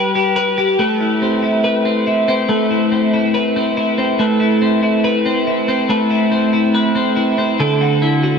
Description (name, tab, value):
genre	indie pop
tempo	141 BPM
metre	4/4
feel	straight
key	A dorian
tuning	A4 = 435 Hz
part	twelve-string electric guitar	solo	0.0-8.4 s	D3 to B4	-13 LUFS	equal	lush chorus
room	wet huge ambient reverb, RT60 7.6 s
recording	dreamy mix soaked in reverb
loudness	-13 LUFS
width	side -6 dB against mid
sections	0.8-8.4 A section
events	none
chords	0.0 G; 0.8 Amadd9; 7.6 Dadd9